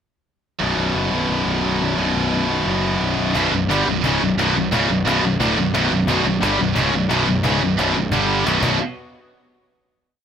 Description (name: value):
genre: heavy metal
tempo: 176 BPM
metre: 4/4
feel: straight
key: B minor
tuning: A4 = 441 Hz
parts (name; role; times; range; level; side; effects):
- lush unison pad; sustained chords; 0.6-8.8 s; D3 to D#5; -35 LUFS; equal; none
- heavy high-gain guitar; riff; 0.6-8.8 s; B1 to G3; -21 LUFS; right 10 dB; distortion
- tight distorted guitar; riff; 0.6-8.8 s; B1 to G3; -21 LUFS; left 7 dB; distortion
- fuzz picked electric bass; bass; 0.6-8.8 s; B0 to G1; -24 LUFS; right 1 dB; overdrive
- heavy high-gain guitar; riff; 3.3-8.8 s; B1 to G3; -24 LUFS; right 1 dB; distortion
- cajon; drums; 3.4-8.7 s; none; -29 LUFS; equal; none
room: little or no reverb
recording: rough home demo mix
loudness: -17 LUFS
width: side -8 dB against mid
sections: 0.6-3.4 intro; 3.4-8.8 riff; 8.8-10.2 final hit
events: none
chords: 0.6 Bm; 8.1 G5; 8.5 Bm; 8.6 B; 8.8 N.C.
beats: | 0.60 0.94 1.29 1.63 | 1.98 2.32 2.66 3.01 | 3.35 3.69 4.04 4.38 | 4.72 5.06 5.40 5.74 | 6.08 6.42 6.76 7.10 | 7.44 7.78 8.12 8.46 | 8.79